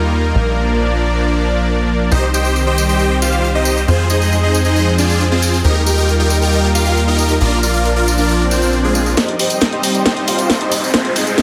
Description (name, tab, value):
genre	uplifting trance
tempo	136 BPM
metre	4/4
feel	straight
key	C minor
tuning	A4 = 440 Hz
part	supersaw pad	sustained chords	0.0-11.4 s	Eb3 to F5	-21 LUFS	equal	none
part	tight sequencer bass	bass	0.0-9.2 s	Bb1 to F2	-19 LUFS	equal	none
part	supersaw chords	melody	2.1-11.4 s	Ab3 to G5	-19 LUFS	equal	phaser, low-pass filter, dub echo
part	tambourine	percussion	2.1-11.4 s	none	-26 LUFS	equal	none
part	swell and riser	sound effects	8.5-11.4 s	none	-26 LUFS	equal	none
part	techno drum kit	drums	9.2-11.4 s	hi-hat, snare drum	-19 LUFS	equal	low-pass filter on cymbals, low-pass filter on snare, low-pass filter on hats, low-pass filter on room
room	light reverb, digital ambience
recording	heavily compressed radio sound, multiband compression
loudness	-15 LUFS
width	mono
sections	0.0-9.2 A section; 9.2-11.4 B section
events	swell 8.5-9.2; build-up 9.2-11.4; drum fill 9.2-11.4; riser 9.6-11.4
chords	0.3 Bb; 2.1 Cm; 3.9 Fm; 5.6 Ebadd9; 7.4 Bb; 9.2 Cm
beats	| 0.35 0.79 1.23 1.67 | 2.12 2.56 3.00 3.44 | 3.88 4.32 4.76 5.20 | 5.64 6.09 6.53 6.97 | 7.41 7.85 8.29 8.73 | 9.17 9.62 10.06 10.50 | 10.94 11.38